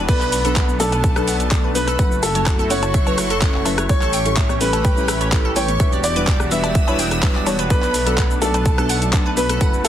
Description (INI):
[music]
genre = progressive house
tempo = 126 BPM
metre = 4/4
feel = straight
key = B minor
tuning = A4 = 440 Hz
[part]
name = filtered supersaw swell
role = sustained chords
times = 0.0-9.9 s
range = E3 to G4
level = -27 LUFS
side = right 2 dB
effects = sidechain pumping
[part]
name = glassy wavetable pluck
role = arpeggios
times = 0.0-9.9 s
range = A4 to G6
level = -27 LUFS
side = equal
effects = chorus, phaser, sidechain pumping, digital delay
[part]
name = dark detuned saw bass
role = bass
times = 0.0-9.9 s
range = E1 to B1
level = -24 LUFS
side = equal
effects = sidechain pumping
[part]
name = bright concert grand piano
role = melody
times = 0.1-9.9 s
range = A4 to E5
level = -23 LUFS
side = equal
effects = ping-pong delay
[part]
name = warm symphonic violin section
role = second line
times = 0.1-9.9 s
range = A5 to E6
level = -29 LUFS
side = left 1 dB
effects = sidechain pumping, digital delay
[part]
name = deep mellow chord stab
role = stabs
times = 0.1-9.7 s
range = F#3 to C#5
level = -25 LUFS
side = left 2 dB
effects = chorus, sidechain pumping, digital delay
[part]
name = electronic kick drum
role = drums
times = 0.1-9.7 s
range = none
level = -18 LUFS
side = equal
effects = none
[part]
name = pop drum kit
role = drums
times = 0.1-9.9 s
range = crash cymbal, handclaps, hi-hat, shaker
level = -25 LUFS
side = right 1 dB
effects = none
[part]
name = electronic rim click, congas and cowbell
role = percussion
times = 0.6-9.6 s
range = none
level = -28 LUFS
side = left 2 dB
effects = sidechain pumping on perc, sidechain pumping on snare
[sound]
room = little or no reverb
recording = heavily compressed radio sound, multiband compression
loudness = -15 LUFS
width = side -10 dB against mid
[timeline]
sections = 0.0-9.9 A section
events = none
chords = 0.1 Bm7; 2.0 F#m7; 3.9 A7; 5.8 Em7; 7.7 Bm7